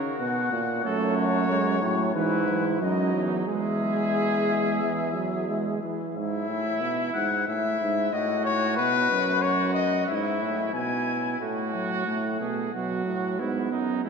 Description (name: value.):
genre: classical, imitative canzona for brass ensemble.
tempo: 91 BPM.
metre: 4/4.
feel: straight.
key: E major.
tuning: A4 = 440 Hz.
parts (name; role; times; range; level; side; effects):
mellow cornet; melody; 0.0-11.4 s; B4 to G#5; -28 LUFS; left 6 dB; none.
warm trumpet; second line; 0.0-14.1 s; D#4 to A4; -32 LUFS; right 4 dB; none.
warm euphonium; bass; 0.2-14.1 s; E2 to B2; -28 LUFS; right 2 dB; none.
clear trombone; accompaniment; 0.8-6.1, 11.4-14.1 s; E3 to B3; -29 LUFS; right 2 dB; none.
room: wet cathedral reverb, RT60 4.4 s.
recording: none.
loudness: -23 LUFS.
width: side -5 dB against mid.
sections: 0.0-6.2 A section; 6.2-11.4 B section; 11.4-14.1 A section.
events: none.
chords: 0.0 F#; 0.9 F#m; 2.2 E/G#; 2.8 D#m; 3.5 E; 6.2 E/G#; 7.5 A; 8.8 B; 10.1 E/G#; 11.4 F#m/A; 12.7 B.